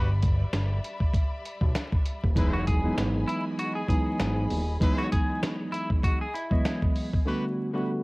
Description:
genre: hip hop, boom-bap hip-hop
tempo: 98 BPM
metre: 4/4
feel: swing 57% on 16ths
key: E major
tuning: A4 = 441 Hz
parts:
  - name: rich symphonic string section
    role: sustained chords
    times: 0.0-7.2 s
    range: G3 to B5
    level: -41 LUFS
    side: left 1 dB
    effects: high-pass filter, low-pass filter
  - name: clear trumpet section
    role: stabs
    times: 0.0-7.5 s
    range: G3 to B4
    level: -39 LUFS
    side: left 2 dB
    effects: high-pass filter, low-pass filter, analog delay
  - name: fat analog bass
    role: bass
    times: 0.0-4.8 s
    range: D#1 to B1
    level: -27 LUFS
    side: equal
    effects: none
  - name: dusty soul sampler-style drum kit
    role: drums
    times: 0.2-7.3 s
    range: hi-hat, kick drum, snare drum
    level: -26 LUFS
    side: equal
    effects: cassette tape
  - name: mellow tine electric piano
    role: accompaniment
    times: 2.3-8.0 s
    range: D3 to D#5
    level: -29 LUFS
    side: equal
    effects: medium stereo tremolo, high-pass filter, low-pass filter
  - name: semi-hollow electric guitar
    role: melody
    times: 2.5-6.8 s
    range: E4 to G#4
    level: -34 LUFS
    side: equal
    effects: high-pass filter, low-pass filter, cassette tape, analog delay
room: digital ambience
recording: home recording on cassette, vinyl crackle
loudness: -24 LUFS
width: side -25 dB against mid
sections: 0.0-8.0 A section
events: break 0.0-2.4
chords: 0.0 G; 2.4 Emaj7; 7.3 Gmaj7

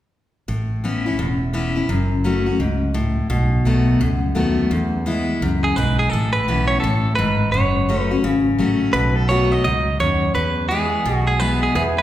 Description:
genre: honky-tonk and classic country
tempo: 170 BPM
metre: 4/4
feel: swing 64% on 8ths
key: A major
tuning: A4 = 440 Hz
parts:
  - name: picked steel-string acoustic guitar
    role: accompaniment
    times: 0.5-12.0 s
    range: E2 to F#4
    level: -20 LUFS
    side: left 2 dB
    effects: none
  - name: fretless electric bass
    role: bass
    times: 0.5-12.0 s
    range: E1 to E2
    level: -21 LUFS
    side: right 1 dB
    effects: none
  - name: direct-recorded clean electric guitar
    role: melody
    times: 5.6-12.0 s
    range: G#4 to D#5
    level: -21 LUFS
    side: right 2 dB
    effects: none
  - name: pedal steel guitar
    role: sustained chords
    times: 11.8-12.0 s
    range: G#4 to E5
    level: -22 LUFS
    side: right 2 dB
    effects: none
room: wet recital hall reverb, RT60 1.7 s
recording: recorded in a church or concert hall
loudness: -17 LUFS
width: side -12 dB against mid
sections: 0.5-6.1 A section; 6.1-12.0 B section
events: none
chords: 0.5 Aadd9; 1.9 F#m; 3.3 B7; 4.7 E; 6.1 Aadd9; 7.5 F#m; 8.9 B7; 10.4 E

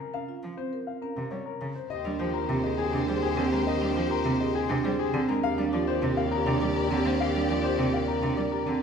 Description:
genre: classical, minimalist pattern music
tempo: 102 BPM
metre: 3/4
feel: straight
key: unclear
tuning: A4 = 438 Hz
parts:
  - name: warm grand piano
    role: melody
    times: 0.0-8.7 s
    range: Ab4 to F5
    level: -32 LUFS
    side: left 8 dB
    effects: none
  - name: marimba with soft mallets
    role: arpeggios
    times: 0.1-8.8 s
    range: C4 to Bb4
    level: -29 LUFS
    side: right 5 dB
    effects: none
  - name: rich cello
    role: accompaniment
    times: 0.4-8.8 s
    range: C3 to Bb3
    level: -33 LUFS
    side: equal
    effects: none
  - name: mellow hollow wooden-headed alto flute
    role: second line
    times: 1.9-8.7 s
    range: G4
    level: -35 LUFS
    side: left 2 dB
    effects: none
  - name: warm symphonic violin section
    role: sustained chords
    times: 1.9-8.8 s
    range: G4 to D5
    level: -35 LUFS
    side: left 5 dB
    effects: none
  - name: clear double bass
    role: bass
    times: 1.9-8.8 s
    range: Eb2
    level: -33 LUFS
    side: right 2 dB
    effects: none
room: moderate recital hall reverb, RT60 1.7 s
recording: minimal, uncompressed stereo recording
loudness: -25 LUFS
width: side -6 dB against mid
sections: 0.0-1.9 A section; 1.9-8.8 B section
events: none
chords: 0.1 Bbmadd9; 1.9 Abmaj9#11/Eb; 5.4 Ebmaj9

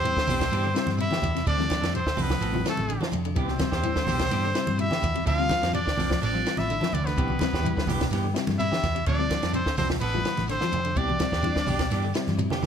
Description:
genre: afrobeat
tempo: 126 BPM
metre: 4/4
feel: straight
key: unclear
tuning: A4 = 440 Hz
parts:
  - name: bright trumpet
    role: melody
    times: 0.0-12.4 s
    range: A4 to F5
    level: -29 LUFS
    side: left 1 dB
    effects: none
  - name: raspy tenor saxophone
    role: second line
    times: 0.0-12.4 s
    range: A3 to F4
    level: -36 LUFS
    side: right 3 dB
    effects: slapback echo
  - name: reed electric piano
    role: accompaniment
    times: 0.0-12.5 s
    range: C3 to F4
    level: -33 LUFS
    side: left 6 dB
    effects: overdrive, spring reverb
  - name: electric guitar at the edge of break-up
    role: arpeggios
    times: 0.0-12.6 s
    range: B2 to F3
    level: -34 LUFS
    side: left 6 dB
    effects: phaser
  - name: semi-hollow electric guitar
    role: stabs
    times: 0.0-12.7 s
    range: E3 to A4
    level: -34 LUFS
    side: right 3 dB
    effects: none
  - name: hollow-body short-scale fingered electric bass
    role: bass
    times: 0.0-12.7 s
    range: A1 to G2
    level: -30 LUFS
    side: equal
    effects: none
  - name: shekere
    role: percussion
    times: 0.0-12.7 s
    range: none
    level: -36 LUFS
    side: right 5 dB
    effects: none
  - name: compact cocktail drum kit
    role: drums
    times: 0.1-12.7 s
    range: hi-hat, kick drum, ride cymbal, snare drum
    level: -30 LUFS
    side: right 1 dB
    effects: none
  - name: congas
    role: percussion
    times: 0.3-12.7 s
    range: none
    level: -32 LUFS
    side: right 1 dB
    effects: none
room: light reverb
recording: none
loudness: -23 LUFS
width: side -8 dB against mid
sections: 0.0-12.7 A section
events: drum fill 12.3-12.7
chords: 0.0 Cmaj9; 1.5 Dm7; 3.4 Cmaj9; 5.3 Dm7; 7.2 Cmaj9; 9.1 Dm7; 11.0 Cmaj9

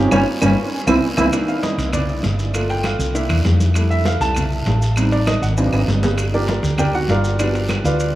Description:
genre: Afro-Cuban jazz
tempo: 198 BPM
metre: 4/4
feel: straight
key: unclear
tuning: A4 = 440 Hz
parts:
  - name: warm trombone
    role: melody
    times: 0.0-1.3 s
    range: Db4 to E4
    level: -26 LUFS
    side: right 1 dB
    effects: none
  - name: clear grand piano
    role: accompaniment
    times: 0.0-8.2 s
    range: Eb3 to A5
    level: -20 LUFS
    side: equal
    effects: none
  - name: hollow-body short-scale fingered electric bass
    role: bass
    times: 0.0-8.2 s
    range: G1 to F2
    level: -19 LUFS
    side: equal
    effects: none
  - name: claves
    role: percussion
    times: 0.1-7.8 s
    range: none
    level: -31 LUFS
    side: right 2 dB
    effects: none
  - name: congas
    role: percussion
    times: 0.1-8.2 s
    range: none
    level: -26 LUFS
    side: equal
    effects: none
  - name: guiro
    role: percussion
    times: 0.1-8.2 s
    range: none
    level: -33 LUFS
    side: right 2 dB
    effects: none
  - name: maracas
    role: percussion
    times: 0.1-8.2 s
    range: none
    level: -36 LUFS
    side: left 2 dB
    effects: none
  - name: timbales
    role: percussion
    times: 0.1-8.2 s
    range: none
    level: -28 LUFS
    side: right 2 dB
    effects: none
room: wet cathedral reverb, RT60 5.9 s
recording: in a vast, echoing space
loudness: -16 LUFS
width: side -15 dB against mid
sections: 0.0-1.3 A section; 1.3-8.2 B section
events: band accent 0.1-1.3; grand piano solo 1.3-8.2; drum fill 5.6-6.2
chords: 0.1 Gdim; 0.7 C7; 1.3 Cm9; 2.5 Gm7; 3.1 C7; 3.8 Fmaj7; 5.0 Am7b5; 5.6 Ab7#11; 6.2 Gm7; 7.4 G7

